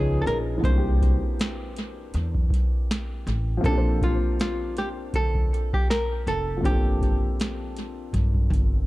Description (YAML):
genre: lo-fi hip hop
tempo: 80 BPM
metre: 4/4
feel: swing 55% on 16ths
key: unclear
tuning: A4 = 440 Hz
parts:
  - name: archtop guitar, miked and amplified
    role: melody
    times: 0.0-8.1 s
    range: F4 to C5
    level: -29 LUFS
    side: equal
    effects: low-pass filter, tape echo
  - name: dark upright piano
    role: accompaniment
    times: 0.0-8.9 s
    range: E3 to C5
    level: -31 LUFS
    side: left 1 dB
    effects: low-pass filter, tape echo
  - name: upright bass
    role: bass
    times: 0.0-8.8 s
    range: F1 to G2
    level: -26 LUFS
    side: equal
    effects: none
  - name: booming analog drum machine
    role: drums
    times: 0.3-8.7 s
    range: hi-hat, kick drum, snare drum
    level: -24 LUFS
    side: equal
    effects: vintage 12-bit sampler grit
room: small room ambience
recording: echo-heavy mix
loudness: -22 LUFS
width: side -18 dB against mid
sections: 0.0-8.9 A section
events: none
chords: 0.0 C#9; 0.6 C7; 3.6 Bbadd9; 6.6 Gm11